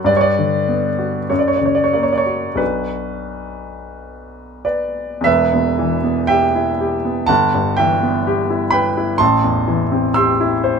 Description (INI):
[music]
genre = classical, romantic nocturne for solo piano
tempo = 43-64 BPM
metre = 4/4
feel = rubato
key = B minor, E minor from 5.3 s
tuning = A4 = 443 Hz
[part]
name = warm grand piano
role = solo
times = 0.0-10.8 s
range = E1 to E6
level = -15 LUFS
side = equal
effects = none
[sound]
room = moderate small room reverb, RT60 0.5 s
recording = minimal, uncompressed stereo recording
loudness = -14 LUFS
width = side -6 dB against mid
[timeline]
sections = 0.0-5.3 A section; 5.3-10.8 B section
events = none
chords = 0.1 Gmaj7; 1.3 F#; 2.6 Bm; 5.3 Em; 7.3 Em/G; 9.2 Am7